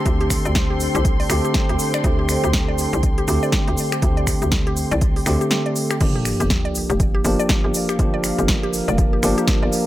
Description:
deep house; 121 BPM; 4/4; swing 60% on 16ths; G minor; A4 = 441 Hz
deep dark ambient pad; sustained chords; 0.0-9.9 s; A4 to G5; -30 LUFS; equal; chorus, built-in reverb, sidechain pumping
tine electric piano; stabs; 0.0-9.9 s; D3 to G4; -23 LUFS; equal; sidechain pumping, digital delay
dark studio violin section; texture; 0.0-6.0 s; C6; -33 LUFS; left 1 dB; sidechain pumping
warbly tape-like pad; texture; 0.0-9.9 s; Bb3 to G5; -32 LUFS; equal
hollow knocking FM bass; bass; 0.1-9.7 s; F1 to D2; -24 LUFS; equal; tube saturation, sidechain pumping
deep house drum kit; drums; 0.1-9.8 s; cabasa, crash cymbal, finger snaps, hi-hat, snare drum; -24 LUFS; equal
electronic kick drum; drums; 0.1-9.6 s; -20 LUFS; equal
mallet-like synth pluck; arpeggios; 0.2-9.7 s; G4 to D5; -29 LUFS; left 3 dB; chorus, sidechain pumping, digital delay
sub drop; sound effects; 6.0-8.0 s; -28 LUFS; equal
little or no reverb; -17 LUFS; side -14 dB against mid
0.0-6.0 A section; 6.0-9.9 B section
drop 6.0-9.9; impact 6.0-8.0
0.0 D7sus4; 6.0 Gm7

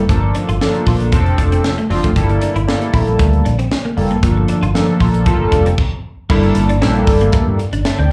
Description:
early-eighties boogie funk; 116 BPM; 4/4; straight; G dorian; A4 = 440 Hz
chorused polysynth; accompaniment; 0.0-8.1 s; F3 to A5; -19 LUFS; equal; slapback echo
clean electric guitar; riff; 0.0-8.1 s; A3 to F4; -27 LUFS; equal; ensemble chorus, slapback echo
vintage muted fingered electric bass; bass; 0.0-8.1 s; F1 to G2; -18 LUFS; equal
tight funk drum kit; drums; 0.1-8.0 s; crash cymbal, hi-hat, kick drum, snare drum; -21 LUFS; equal
light reverb; live gig heard through the venue's PA, club reverb; -15 LUFS; mono
0.0-6.3 A section; 6.3-8.1 B section
stop 5.8-6.3
0.1 Gm9; 1.1 F6; 2.2 Gm69; 4.2 Gm9; 6.3 Gm69

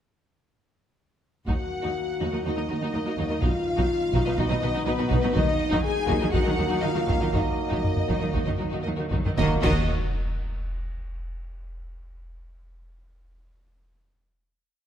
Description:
cinematic, epic orchestral film score; 122 BPM; 4/4; uneven beats; Eb minor; A4 = 439 Hz
warm symphonic violin section; melody; 1.5-9.9 s; B4 to Ab5; -33 LUFS; left 4 dB
warm symphonic violin section; second line; 1.5-9.9 s; Eb4 to Eb5; -34 LUFS; left 2 dB
warm symphonic viola section; accompaniment; 1.5-9.9 s; Gb3 to Gb4; -33 LUFS; equal
mellow French horn section; sustained chords; 1.5-9.6 s; B3 to Ab4; -30 LUFS; left 3 dB
mellow trombone section; sustained chords; 1.5-9.6 s; Eb3 to B3; -34 LUFS; right 5 dB
rich symphonic cello section; bass; 1.5-9.9 s; Eb2 to Eb3; -31 LUFS; right 2 dB
rich symphonic double bass section; bass; 1.5-9.9 s; B1 to Eb2; -31 LUFS; right 3 dB
taiko ensemble; drums; 1.5-10.6 s; -28 LUFS; equal
cymbal swell, concert snare drum, concert bass drum and clash cymbals; percussion; 5.4-10.6 s; -33 LUFS; equal
moderate scoring stage reverb, RT60 1.7 s; -23 LUFS; side -9 dB against mid
1.5-9.4 theme; 9.4-11.4 final chord
band accent 9.4-9.9
1.5 Ebm; 3.4 B; 5.4 Ebm

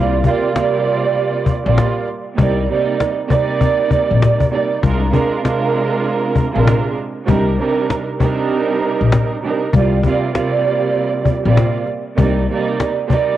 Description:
hip hop, boom-bap hip-hop; 98 BPM; 4/4; swing 61% on 16ths; C minor; A4 = 440 Hz
warm studio string section; accompaniment; 0.0-13.4 s; C3 to D5; -16 LUFS; right 4 dB; high-pass filter, low-pass filter
upright bass; bass; 0.0-12.5 s; Bb1 to C2; -16 LUFS; left 3 dB
cajon; drums; 0.2-13.3 s; -18 LUFS; left 3 dB; cassette tape
light reverb, small room reverb; home recording on cassette; -14 LUFS; side -12 dB against mid
0.0-13.4 A section
kick muted 8.5-9.7
0.0 Gm7/C; 2.4 Cm9; 4.8 Bb7/C; 7.3 Cm9; 9.7 Gm7/C; 12.2 Cm9

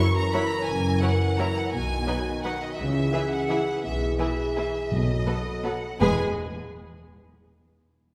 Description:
classical, orchestral ballroom waltz; 169 BPM; 3/4; uneven beats, rubato; E major; A4 = 437 Hz
rich studio violin section; melody; 0.0-6.2 s; D#5 to C#6; -34 LUFS; equal
rich studio violin section; second line; 0.0-6.2 s; G#4 to E5; -36 LUFS; equal
rich studio viola section; accompaniment; 0.0-6.2 s; E3 to G#4; -34 LUFS; equal
warm French horn section; sustained chords; 0.0-6.1 s; D#3 to B4; -32 LUFS; equal
dark studio cello section; bass; 0.7-6.2 s; E2 to C#3; -34 LUFS; equal
rich studio double bass section; bass; 0.7-6.2 s; E1 to C#2; -31 LUFS; equal
timpani; percussion; 4.9-6.2 s; E2 to B2; -34 LUFS; equal
wet scoring stage reverb, RT60 2.0 s; heard from further back in the room; -26 LUFS; mono
0.0-6.0 A section; 6.0-7.1 B section
0.0 F#7; 1.7 B; 2.8 C#m; 3.8 E/B; 4.9 B7; 6.0 E

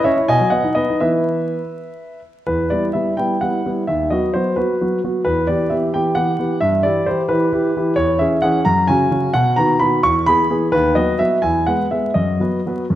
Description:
classical-period piano sonatina; 81-89 BPM (dotted quarters); 6/8; rubato; E minor, B major from 8.0 s; A4 = 439 Hz
warm concert grand piano; solo; 0.0-13.0 s; D#2 to C#6; -15 LUFS; equal
moderate recital hall reverb, RT60 1.4 s; dark, warm production, vinyl crackle; -15 LUFS; side -13 dB against mid
0.0-2.5 A section; 2.5-13.0 B section
0.3 B; 1.0 E5; 2.5 Em; 3.9 B/D#; 5.3 Em; 6.6 Em/G; 8.0 C#m/E; 8.7 F#5; 9.3 B; 10.0 E; 10.7 B/D#; 11.4 E; 12.2 B/F#

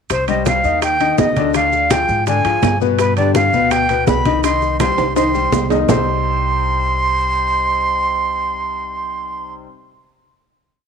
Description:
latin, salsa; 166 BPM; 4/4; straight; C harmonic minor; A4 = 438 Hz
breathy bright jazz flute; melody; 0.1-9.5 s; B4 to C6; -17 LUFS; right 2 dB
upright bass; bass; 0.1-9.6 s; C2 to Ab2; -23 LUFS; right 2 dB
bongos; percussion; 0.1-6.0 s; -24 LUFS; left 11 dB
congas; percussion; 0.1-6.0 s; -22 LUFS; right 1 dB
maracas; percussion; 0.1-6.0 s; -34 LUFS; right 18 dB
timbales; percussion; 0.1-6.0 s; -23 LUFS; right 14 dB
bright grand piano; accompaniment; 0.3-9.6 s; B2 to Eb5; -20 LUFS; left 11 dB
moderate echo chamber reverb, RT60 1.8 s, studio reverb; 1960s-style stereo with parts hard left and right; -14 LUFS; side -6 dB against mid
0.1-5.9 A section; 5.9-8.8 final chord
drum fill 5.0-5.9
0.1 Cm; 1.5 Ddim; 3.0 G; 4.4 Cm

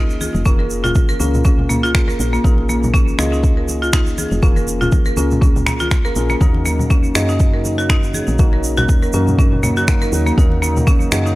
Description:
afro house; 121 BPM; 4/4; swing 55% on 16ths; Eb minor; A4 = 444 Hz
buzzing marimba with hard mallets; arpeggios; 0.0-11.4 s; Bb3 to Bb4; -22 LUFS; right 1 dB; sidechain pumping, tape echo
mellow tine electric piano; stabs; 0.0-11.4 s; Bb3 to Eb5; -22 LUFS; left 2 dB; sidechain pumping, low-pass filter, tape echo
woody FM bass; bass; 0.0-11.4 s; F1 to Gb2; -21 LUFS; equal; tube saturation, sidechain pumping
congas; percussion; 0.1-11.2 s; -25 LUFS; left 1 dB
egg shaker; percussion; 0.1-11.3 s; -30 LUFS; right 3 dB
electronic kick drum; drums; 0.5-11.0 s; -14 LUFS; equal
electronic finger snaps; drums; 1.9-11.2 s; -24 LUFS; equal
warm analog pad; sustained chords; 6.4-11.4 s; Db3 to Eb4; -27 LUFS; right 1 dB; chorus, sidechain pumping
small room ambience; dry, gritty hardware recording, transformer saturation; -13 LUFS; side -18 dB against mid
0.0-11.4 A section
0.0 Bbm7; 6.4 Ebm7

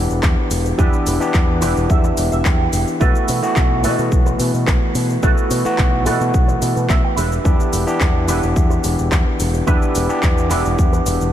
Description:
nu-disco, nu disco; 108 BPM; 4/4; straight; E minor; A4 = 440 Hz
overdriven tine electric piano; accompaniment; 0.0-11.3 s; E3 to G4; -20 LUFS; equal; sidechain pumping, analog delay
picked electric bass with an envelope filter; bass; 0.0-11.3 s; E1 to B2; -20 LUFS; equal
house drum kit; drums; 0.1-11.3 s; cabasa, handclaps, hi-hat; -26 LUFS; left 1 dB; overdrive
electric guitar with an envelope filter; riff; 0.2-11.1 s; D4 to G5; -25 LUFS; right 4 dB; analog chorus, analog delay
electronic kick drum; drums; 0.2-10.9 s; -16 LUFS; equal; overdrive
moderate cathedral reverb, RT60 5.8 s; dreamy mix soaked in reverb; -14 LUFS; side -11 dB against mid
0.0-11.3 A section
clean electric guitar fill 1.3-3.0, 6.6-7.5
0.0 Em7; 3.0 B7sus4; 7.2 Em7

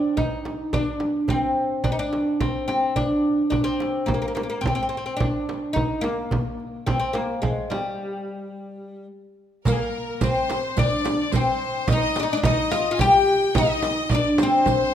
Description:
Arabic maqam ensemble; 108 BPM; 3/4; straight; A4 = 443 Hz
oud; melody; 0.0-14.9 s; G3 to G4; -22 LUFS; left 1 dB
darbuka; percussion; 0.2-14.8 s; -28 LUFS; right 1 dB
frame drum; percussion; 0.2-14.8 s; -29 LUFS; right 2 dB
clear studio violin section; second line; 9.7-14.9 s; Bb4 to Ab5; -29 LUFS; left 1 dB
rich violin; second line; 9.7-14.9 s; Ab4 to G5; -28 LUFS; left 5 dB
riq; percussion; 9.7-14.8 s; -34 LUFS; right 6 dB
moderate recital hall reverb, RT60 1.7 s; minimal, uncompressed stereo recording; -20 LUFS; side -10 dB against mid
0.0-9.7 A section; 9.7-14.9 B section
break 8.0-9.7

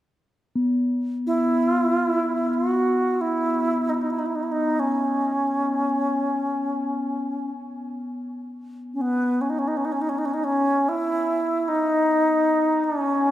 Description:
world meditative, free-time meditation music; free time; A4 = 441 Hz
quartz singing bowl; texture; 0.6-8.9 s; B3; -28 LUFS; left 1 dB
bright alto flute; melody; 1.3-13.3 s; B3 to F#4; -22 LUFS; equal; tape echo
wet spring reverb, RT60 1.6 s, small room ambience; echo-heavy mix; -21 LUFS; side -13 dB against mid
0.1-13.3 A section

